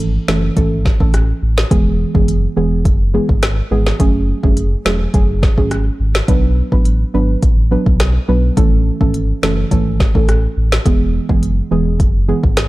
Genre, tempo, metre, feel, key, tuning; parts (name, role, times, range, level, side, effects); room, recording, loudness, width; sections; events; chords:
dancehall; 105 BPM; 4/4; straight; A major; A4 = 440 Hz
soft round pluck; accompaniment; 0.0-12.5 s; E3 to B4; -18 LUFS; right 2 dB; chorus, sidechain pumping
sub bass with octave; bass; 0.0-12.7 s; E1 to B1; -16 LUFS; equal
afro-pop drum kit; drums; 0.3-12.7 s; hi-hat, kick drum, rim click, snare drum; -15 LUFS; equal
digital ambience; dark, warm production; -12 LUFS; side -18 dB against mid
0.0-12.7 A section
0.0 A; 1.7 E; 4.0 F#madd9; 6.3 Bm; 8.6 A; 10.9 E